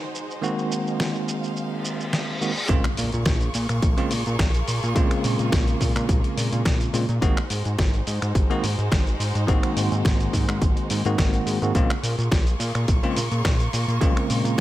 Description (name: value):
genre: nu-disco, nu disco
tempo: 106 BPM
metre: 4/4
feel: swing 53% on 16ths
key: Bb minor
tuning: A4 = 440 Hz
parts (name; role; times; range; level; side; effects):
- rich studio violin section; sustained chords; 0.0-14.6 s; Ab3 to Db6; -32 LUFS; right 1 dB; sidechain pumping
- dusty soul sampler-style drum kit; drums; 0.2-14.6 s; finger snaps, hi-hat, shaker, snare drum; -29 LUFS; equal; none
- bell-like tine electric piano; accompaniment; 0.4-14.6 s; Db3 to Gb4; -26 LUFS; equal; medium stereo tremolo, sidechain pumping, ping-pong delay
- reverse cymbal and impact; sound effects; 1.8-5.0 s; none; -32 LUFS; left 1 dB; none
- fat analog bass; bass; 2.7-14.6 s; Ab1 to Bb2; -25 LUFS; equal; none
- electronic kick drum; drums; 2.7-14.6 s; none; -22 LUFS; equal; overdrive
room: digital ambience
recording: none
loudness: -20 LUFS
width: side -15 dB against mid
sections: 0.0-2.7 A section; 2.7-14.6 B section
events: reverse cymbal 1.8-2.7; drop 2.7-14.6; impact 2.7-5.0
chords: 0.0 Ab7; 2.7 Bbm7; 7.2 Ab7; 11.7 Bbm7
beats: | 0.43 0.99 1.56 2.12 | 2.69 3.26 3.82 4.39 | 4.96 5.52 6.09 6.65 | 7.22 7.79 8.35 8.92 | 9.48 10.05 10.62 11.18 | 11.75 12.31 12.88 13.45 | 14.01 14.58